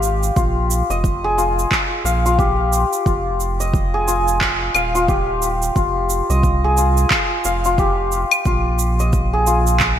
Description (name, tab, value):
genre	organic downtempo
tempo	89 BPM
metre	4/4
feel	swing 60% on 16ths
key	F minor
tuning	A4 = 441 Hz
part	santur	arpeggios	0.0-10.0 s	F4 to F5	-19 LUFS	left 2 dB	digital delay
part	warm sub bass	bass	0.0-10.0 s	Eb1 to C2	-20 LUFS	equal	tube saturation, sidechain pumping
part	electronic shaker, handclaps and claves	drums	0.0-10.0 s	none	-20 LUFS	right 1 dB	gated reverb
part	electronic kick drum	drums	0.4-10.0 s	none	-20 LUFS	equal	overdrive
room	moderate lush hall reverb, RT60 2.6 s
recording	bright 1980s-style digital production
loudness	-15 LUFS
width	side -10 dB against mid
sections	0.0-10.0 A section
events	none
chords	0.0 Bb5; 3.1 Fm7; 8.5 Bb5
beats	| 0.36 1.04 1.71 2.39 | 3.06 3.74 4.41 5.08 | 5.76 6.43 7.11 7.78 | 8.46 9.13 9.80